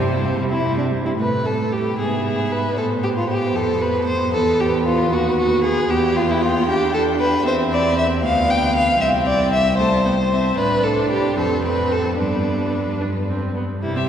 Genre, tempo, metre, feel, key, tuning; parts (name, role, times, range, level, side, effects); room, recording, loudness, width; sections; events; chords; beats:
quick classical-period movement for string quartet; 76 BPM (dotted quarters); 6/8; straight; C major from 7.5 s; A4 = 439 Hz
warm violin; melody; 0.0-14.1 s; B4 to A5; -28 LUFS; left 4 dB
warm violin; second line; 0.0-14.1 s; C4 to G5; -20 LUFS; equal
clear viola; accompaniment; 0.0-14.1 s; G3 to D4; -24 LUFS; right 1 dB
rich cello; bass; 0.0-14.1 s; C2 to C3; -23 LUFS; right 2 dB
wet cathedral reverb, RT60 4.9 s; heard from further back in the room; -17 LUFS; side -8 dB against mid
0.0-1.2 A section; 1.2-13.8 B section
0.0 C; 1.2 Gadd9/A; 2.0 E/G#; 2.8 Am; 4.3 E5; 5.1 B/D#; 5.9 Em; 7.5 C/E; 8.2 Dm6; 9.0 C5; 10.6 A9sus4; 11.4 F5; 12.2 G
0.38 | 1.19 1.98 | 2.77 3.55 | 4.34 5.12 | 5.90 6.67 | 7.45 8.23 | 9.01 9.78 | 10.57 11.37 | 12.19 13.01 | 13.82